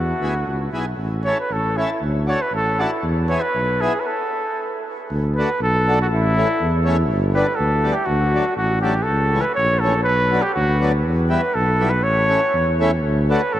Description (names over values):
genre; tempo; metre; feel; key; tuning
alpine folk, alpine dance band; 120 BPM; 2/4; rubato; D major from 5.1 s; A4 = 440 Hz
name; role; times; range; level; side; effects
warm trumpet; melody; 0.0-13.6 s; E4 to C#5; -20 LUFS; right 1 dB; none
dark tuba; bass; 0.0-13.6 s; G1 to E2; -20 LUFS; equal; none
accordion; accompaniment; 0.2-13.4 s; E3 to A4; -25 LUFS; left 1 dB; none
room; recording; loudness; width
wet huge ambient reverb, RT60 7.7 s; in a vast, echoing space; -17 LUFS; side -12 dB against mid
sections
0.0-5.1 A section; 5.1-13.6 B section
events
stop 4.1-5.1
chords
0.0 E; 1.0 A; 2.0 D; 3.0 E; 4.1 N.C.; 5.1 D; 6.1 A; 7.1 G; 8.1 D; 9.1 A/C#; 10.1 Bm; 11.1 Em; 12.0 A; 13.0 D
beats
0.48 | 1.00 1.52 | 2.03 2.54 | 3.05 3.56 | 4.07 4.59 | 5.11 5.62 | 6.12 6.61 | 7.10 7.59 | 8.08 8.58 | 9.07 9.58 | 10.07 10.57 | 11.06 11.55 | 12.04 12.54 | 13.04 13.54